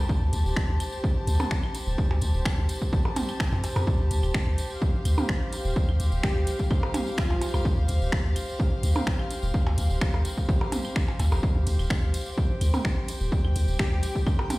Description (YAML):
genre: minimal techno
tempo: 127 BPM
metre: 4/4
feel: straight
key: D minor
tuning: A4 = 440 Hz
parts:
  - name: punchy sub bass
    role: bass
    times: 0.0-14.0 s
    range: D1 to F2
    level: -24 LUFS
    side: equal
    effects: sidechain pumping
  - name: rich chamber string section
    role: texture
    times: 0.0-14.6 s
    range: G4 to A5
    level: -34 LUFS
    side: left 1 dB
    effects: sidechain pumping
  - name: electronic kick drum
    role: drums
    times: 0.1-14.4 s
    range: none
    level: -26 LUFS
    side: equal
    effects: overdrive
  - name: tambourine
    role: percussion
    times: 0.1-14.6 s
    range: none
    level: -41 LUFS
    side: right 1 dB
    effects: none
  - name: house drum kit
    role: drums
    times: 0.3-14.6 s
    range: finger snaps, hi-hat, ride cymbal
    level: -34 LUFS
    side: left 1 dB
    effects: overdrive
  - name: electronic claves, toms and percussion blips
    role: percussion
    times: 0.8-14.6 s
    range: none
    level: -32 LUFS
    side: right 1 dB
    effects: tape echo
  - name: plucky unison lead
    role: melody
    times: 6.2-7.7, 13.8-14.3 s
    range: F4 to G4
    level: -34 LUFS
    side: equal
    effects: tape echo
room: little or no reverb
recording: played on a big sound system in a bare room, stone room reverb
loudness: -23 LUFS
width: side -20 dB against mid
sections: 0.0-14.6 A section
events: none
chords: 0.0 Dm